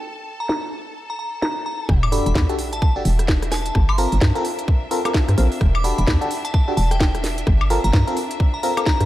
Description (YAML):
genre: UK garage, two-step garage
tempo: 129 BPM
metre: 4/4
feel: swing 60% on 16ths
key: unclear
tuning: A4 = 440 Hz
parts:
  - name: bright symphonic violin section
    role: sustained chords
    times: 0.0-9.1 s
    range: D4 to A5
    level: -35 LUFS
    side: left 1 dB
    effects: sidechain pumping
  - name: glassy synth bell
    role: melody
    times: 0.4-9.1 s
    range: G5 to D6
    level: -28 LUFS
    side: equal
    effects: chorus, dub echo
  - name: garage drum kit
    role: drums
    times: 0.5-9.1 s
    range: hi-hat, rim click, snare drum, woodblock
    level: -25 LUFS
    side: equal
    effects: low-pass filter on snare, low-pass filter on perc, low-pass filter on hats, low-pass filter on room
  - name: hollow knocking FM bass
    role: bass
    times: 1.9-9.1 s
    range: E1 to G2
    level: -19 LUFS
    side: equal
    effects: none
  - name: electronic kick drum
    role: drums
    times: 1.9-9.0 s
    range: none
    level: -18 LUFS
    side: equal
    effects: none
  - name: sub drop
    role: sound effects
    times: 1.9-3.7 s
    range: none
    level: -30 LUFS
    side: equal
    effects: none
  - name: FM electric piano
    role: stabs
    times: 2.1-8.8 s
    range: C4 to Bb4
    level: -24 LUFS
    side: left 1 dB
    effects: chorus, phaser, vintage 12-bit sampler grit, dub echo
room: light reverb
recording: dark, warm production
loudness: -17 LUFS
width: side -15 dB against mid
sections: 0.0-1.9 A section; 1.9-9.1 B section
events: drop 1.9-9.1; impact 1.9-3.7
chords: 0.0 N.C.; 1.9 Em11; 3.7 Gm11; 5.6 Em11; 7.5 Gm11